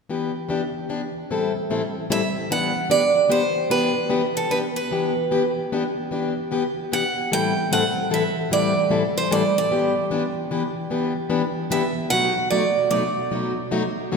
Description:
jazz; 150 BPM; 3/4; swing 63% on 8ths; E minor; A4 = 439 Hz
picked plugged-in steel-string acoustic guitar; accompaniment; 0.1-14.2 s; A2 to A4; -23 LUFS; left 3 dB
picked steel-string acoustic guitar; melody; 2.1-14.2 s; A4 to G5; -22 LUFS; right 4 dB
wet church reverb, RT60 3.5 s; recorded in a church or concert hall; -20 LUFS; side -5 dB against mid
0.1-2.5 A section; 2.5-14.2 B section
0.1 Em7; 1.3 Am7; 2.5 Em7; 7.3 Am7; 9.7 Em7; 12.1 B7#9

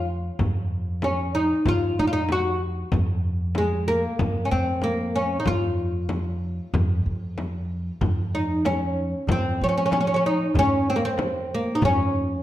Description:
Arabic maqam ensemble; 95 BPM; 4/4; straight; A4 = 440 Hz
oud; melody; 0.0-12.4 s; Ab3 to Gb4; -23 LUFS; equal
upright bass; bass; 0.0-12.4 s; F2 to F3; -28 LUFS; equal
darbuka; percussion; 0.1-12.0 s; -29 LUFS; right 2 dB
frame drum; percussion; 0.4-12.0 s; -30 LUFS; left 2 dB
moderate recital hall reverb, RT60 1.4 s; dark, warm production; -21 LUFS; side -13 dB against mid
0.0-9.3 A section; 9.3-12.4 B section

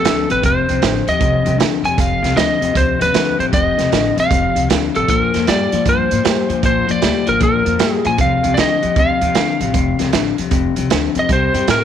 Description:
electric blues shuffle; 155 BPM; 4/4; swing 65% on 8ths; F mixolydian; A4 = 440 Hz
lightly driven lead guitar; melody; 0.0-11.8 s; A4 to Ab5; -18 LUFS; right 1 dB
electric guitar through a small old amp; riff; 0.0-11.8 s; F2 to A3; -19 LUFS; left 10 dB
crunchy breakbeat drum kit; drums; 0.0-11.8 s; hi-hat, kick drum, snare drum; -19 LUFS; right 5 dB
upright bass; bass; 0.1-11.8 s; F1 to Bb2; -22 LUFS; right 1 dB
light reverb, studio reverb; 1960s-style stereo; -13 LUFS; side -9 dB against mid
0.0-11.8 A section
0.0 F6; 5.1 Bb69; 8.2 F5; 11.3 C5

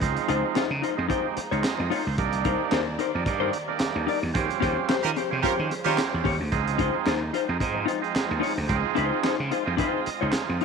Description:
funk; 111 BPM; 4/4; swing 56% on 16ths; A4 = 439 Hz
warm studio string section; sustained chords; 0.0-10.6 s; Db3 to D5; -35 LUFS; right 1 dB
overdriven tonewheel organ; stabs; 0.0-10.6 s; Ab3 to Eb5; -29 LUFS; right 14 dB
gritty slap bass; bass; 0.0-10.6 s; C2 to Eb3; -29 LUFS; right 1 dB; overdrive
crunchy breakbeat drum kit; drums; 0.0-10.6 s; handclaps, hi-hat, kick drum, snare drum; -30 LUFS; right 1 dB
mellow electric guitar; accompaniment; 0.3-10.6 s; Db4 to D5; -28 LUFS; left 12 dB
clear horn section; second line; 5.0-6.0 s; F4 to Bb4; -29 LUFS; right 12 dB
light reverb, small room reverb; 1960s-style stereo with parts hard left and right; -23 LUFS; side -5 dB against mid
0.0-10.6 A section
tonewheel organ fill 1.4-2.2, 9.8-10.6; band accent 4.3-6.5
0.0 Dbmaj9; 2.2 Cm7; 4.3 Eb13; 6.5 Dbmaj9

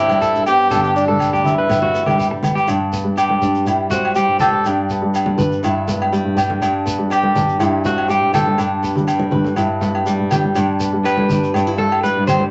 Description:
highlife guitar band; 122 BPM; 4/4; straight; G major; A4 = 438 Hz
breathy tenor saxophone; melody; 0.0-2.4 s; D4 to G4; -20 LUFS; equal
breathy trombone; second line; 0.0-2.4 s; G3 to B3; -32 LUFS; equal
flamenco guitar; accompaniment; 0.0-12.5 s; G2 to B4; -23 LUFS; equal
electric guitar at the edge of break-up; arpeggios; 0.0-12.4 s; F#4 to C5; -21 LUFS; equal
clear double bass; bass; 0.0-12.5 s; G1 to G3; -26 LUFS; equal
agogo bells; percussion; 0.1-12.4 s; -25 LUFS; equal
congas; percussion; 0.1-12.5 s; -26 LUFS; equal
shekere; percussion; 0.1-12.4 s; -34 LUFS; equal
wet small room ambience, RT60 0.5 s; nothing above 7.9 kHz; -17 LUFS; mono
0.0-2.7 A section; 2.7-12.5 B section
clean electric guitar solo 2.7-12.5
0.0 C/G; 0.7 G; 1.7 Em/G; 2.7 G; 3.7 C/G; 4.7 G; 5.6 Em/G; 6.6 G; 7.6 C/G; 8.6 G; 9.6 Em/G; 10.6 G; 11.5 G69

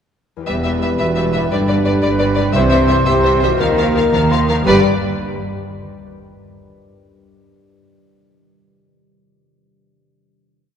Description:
cinematic, heroic adventure film score; 115 BPM (dotted quarters); 6/8; straight; G major; A4 = 440 Hz
concert harp; arpeggios; 0.4-4.9 s; E2 to G5; -25 LUFS; left 7 dB
warm symphonic violin section; melody; 0.5-4.9 s; D5 to F5; -23 LUFS; left 3 dB
clear symphonic violin section; second line; 0.5-4.9 s; Bb4 to C5; -26 LUFS; left 2 dB
clear chamber viola section; accompaniment; 0.5-4.9 s; F3 to G3; -26 LUFS; right 2 dB
bright trombone section; sustained chords; 0.5-4.8 s; D3 to Bb3; -24 LUFS; right 2 dB
warm French horn section; sustained chords; 0.5-4.8 s; B3 to G4; -22 LUFS; left 3 dB
warm trumpet; stabs; 0.5-4.8 s; Bb4 to C5; -21 LUFS; right 1 dB
rich symphonic double bass section; bass; 0.5-4.9 s; E1 to Eb2; -20 LUFS; right 2 dB
warm symphonic cello section; bass; 0.5-4.9 s; E2 to Eb3; -22 LUFS; right 2 dB
hollow concert flute; second line; 4.1-4.6 s; Bb5 to C6; -26 LUFS; left 3 dB
wet church reverb, RT60 2.6 s; recorded in a church or concert hall; -13 LUFS; side -8 dB against mid
0.5-4.7 theme; 4.7-5.7 final chord
0.5 Em; 1.5 G; 2.6 C; 3.6 Ebsus2; 4.7 G

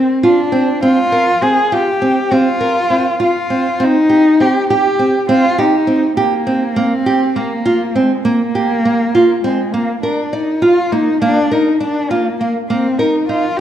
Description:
contemporary instrumental, contemporary; 202 BPM (eighths); 5/8; straight; A4 = 441 Hz
dark cello; melody; 0.0-13.6 s; Ab3 to Ab4; -15 LUFS; left 1 dB
nylon-string guitar; arpeggios; 0.0-13.4 s; Bb3 to D5; -15 LUFS; right 2 dB
moderate concert hall reverb, RT60 2.3 s; minimal, uncompressed stereo recording; -12 LUFS; side -10 dB against mid
0.0-9.7 A section; 9.7-13.6 B section
0.0 Bbsus2 (rootless); 3.8 Cm7; 6.8 Gm7; 9.7 Bb; 12.7 Cm7

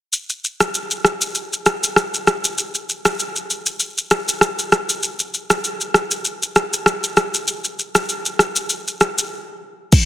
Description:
afrobeats; 98 BPM; 4/4; swing 55% on 16ths
afro-pop drum kit; drums; 0.1-10.1 s; crash cymbal, kick drum, rim click, shaker; -16 LUFS; equal; soft clipping on snare
moderate lush hall reverb, RT60 2.3 s; dense, heavily limited modern master; -17 LUFS; side -13 dB against mid
0.1-9.9 A section
break 9.3-9.9

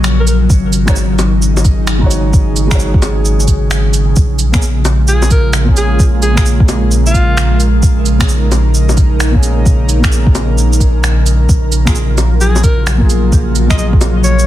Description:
future garage; 131 BPM; 4/4; swing 65% on 16ths; Bb minor; A4 = 441 Hz
felt-muted upright piano; accompaniment; 0.0-14.5 s; Bb2 to Db5; -22 LUFS; equal; sidechain pumping, ping-pong delay
airy breathy pad; sustained chords; 0.0-14.5 s; Db3 to Bb4; -17 LUFS; right 1 dB; chorus, vintage 12-bit sampler grit, sidechain pumping
soft dub sub bass; bass; 0.0-14.5 s; Ab1 to Bb1; -12 LUFS; equal; sidechain pumping
electronic finger snaps, shaker, cabasa and bongos; drums; 0.0-14.5 s; -19 LUFS; right 1 dB; studio reverb, soft clipping on snare
clear alto saxophone; melody; 0.2-0.4, 5.1-7.7, 12.4-14.5 s; F4 to Eb5; -20 LUFS; left 1 dB; ping-pong delay
electronic kick drum; drums; 0.5-14.0 s; -11 LUFS; equal; studio reverb
light reverb; dense, heavily limited modern master; -9 LUFS; side -13 dB against mid
0.0-14.5 A section
0.5 Ab7sus4; 4.2 Bbm7; 11.5 Gbmaj7/Bb

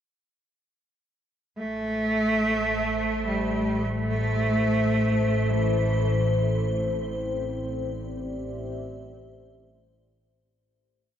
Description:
dark ambient drone; 54 BPM; 4/4; straight; A minor; A4 = 437 Hz
rich cello; melody; 1.6-6.6 s; E3 to A3; -26 LUFS; right 2 dB; diffuse ambient delay
dark analog pad; sustained chords; 3.9-10.6 s; A2 to E5; -35 LUFS; right 1 dB; chorus
analog drone; drone; 2.1-10.7 s; A1 to A2; -28 LUFS; equal; chorus
icy glass pad; texture; 2.5-10.6 s; C5; -32 LUFS; left 6 dB; chorus, built-in reverb
wet huge ambient reverb, RT60 7.7 s; worn, warbling old tape, cassette tape, warbly pitch drift; -23 LUFS; side -9 dB against mid
1.6-10.6 A section
fade-in on analog synth pad 1.6-10.6; filter sweep on synth drone 1.6-10.6; fade-out 6.1-10.6
1.6 Am; 6.1 C/A

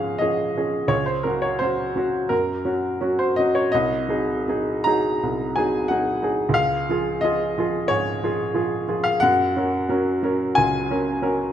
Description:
classical, romantic character piece for solo piano; 72-95 BPM; 4/4; rubato; Db major; A4 = 440 Hz
clear baby grand piano; solo; 0.0-11.5 s; C2 to Bb5; -20 LUFS; equal
wet recital hall reverb, RT60 1.9 s; minimal, uncompressed stereo recording; -20 LUFS; side -10 dB against mid
0.0-11.5 A section
0.0 Db; 0.9 Gb/Db; 3.7 Ab7/C; 6.5 Db; 9.2 Gb

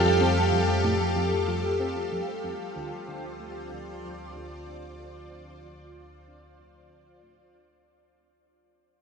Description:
ambient; 94 BPM; 4/4; straight; A4 = 445 Hz
string machine, full ensemble; sustained chords; 0.0-7.5 s; F4 to F5; -27 LUFS; equal; phaser, ensemble chorus
tight sequenced synth; riff; 0.0-7.4 s; D2 to C4; -32 LUFS; equal; chorus, cassette tape, analog delay
analog drone; bass; 0.0-7.5 s; D2 to F2; -31 LUFS; equal; chorus
wet huge ambient reverb, RT60 8.4 s; dark, warm production; -25 LUFS; side -6 dB against mid
0.0-7.5 A section
fade-out on synth arpeggio sound 0.0-7.5; fade-out 0.0-7.5
0.0 Fadd9; 2.4 Dm7

